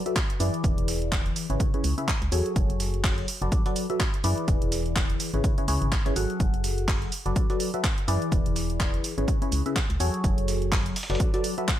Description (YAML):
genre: piano house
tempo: 125 BPM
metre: 4/4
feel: swing 57% on 16ths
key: unclear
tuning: A4 = 440 Hz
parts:
  - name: barking FM electric piano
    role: riff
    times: 0.0-11.7 s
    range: C#3 to F#5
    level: -29 LUFS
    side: left 2 dB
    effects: phaser, sidechain pumping, low-pass filter, tape echo
  - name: house drum kit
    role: drums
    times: 0.1-11.8 s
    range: handclaps, hi-hat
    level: -32 LUFS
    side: right 1 dB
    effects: none
  - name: dusty soul sampler-style drum kit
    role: drums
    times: 0.2-11.8 s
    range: hi-hat, shaker, snare drum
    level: -40 LUFS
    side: right 2 dB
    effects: none
  - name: electronic kick drum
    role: drums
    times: 0.2-11.8 s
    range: none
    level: -26 LUFS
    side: equal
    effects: none
  - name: organ-like FM bass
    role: bass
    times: 0.4-11.2 s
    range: E1 to F#2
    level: -28 LUFS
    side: equal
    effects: sidechain pumping
room: little or no reverb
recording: none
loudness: -23 LUFS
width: side -12 dB against mid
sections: 0.0-11.8 A section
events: none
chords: 0.0 Bm7/F#; 0.6 E7; 1.6 C#m7; 2.6 F#madd9; 3.3 Bm7/F#; 4.5 E7; 5.4 C#m7; 6.4 F#madd9; 7.1 Bm7/F#; 8.3 E7; 9.3 C#m7; 10.2 F#madd9; 11.0 Bm7/F#